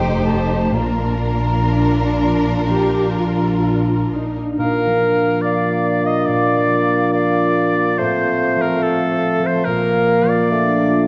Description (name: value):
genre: classical, slow romantic movement for symphony orchestra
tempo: 61-73 BPM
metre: 4/4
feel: rubato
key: Bb major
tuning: A4 = 440 Hz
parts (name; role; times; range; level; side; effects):
- warm studio violin section; melody; 0.0-4.4 s; Bb4 to C5; -30 LUFS; equal; none
- silver concert flute; second line; 0.0-11.0 s; F5 to Bb5; -30 LUFS; equal; none
- warm studio violin section; second line; 0.0-4.4 s; D4 to Eb4; -29 LUFS; equal; none
- dark studio viola section; accompaniment; 0.0-4.6 s; A3 to G4; -25 LUFS; equal; none
- concert harp; arpeggios; 0.0-11.1 s; F2 to Eb5; -25 LUFS; equal; none
- dark studio cello section; bass; 0.0-4.1 s; F4 to G4; -31 LUFS; equal; none
- dark studio double bass section; bass; 0.0-4.4 s; F1 to Bb1; -23 LUFS; equal; none
- clear oboe; second line; 4.6-11.1 s; A4 to Eb5; -23 LUFS; equal; none
- mellow clarinet; second line; 4.6-11.1 s; A4 to Eb5; -25 LUFS; equal; none
- warm bassoon; accompaniment; 4.6-11.1 s; A3 to Bb3; -24 LUFS; equal; none
- mellow French horn section; sustained chords; 4.6-11.1 s; Bb3 to F4; -24 LUFS; equal; none
room: wet scoring stage reverb, RT60 2.0 s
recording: dark, warm production, nothing above 7.9 kHz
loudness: -17 LUFS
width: mono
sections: 0.0-4.6 A section; 4.6-11.1 B section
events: none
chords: 0.0 F7; 0.7 Bb; 8.0 F/A; 9.7 Bb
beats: | 0.74 1.72 2.69 3.65 | 4.59 5.43 6.28 7.14 | 7.99 8.83 9.67 10.51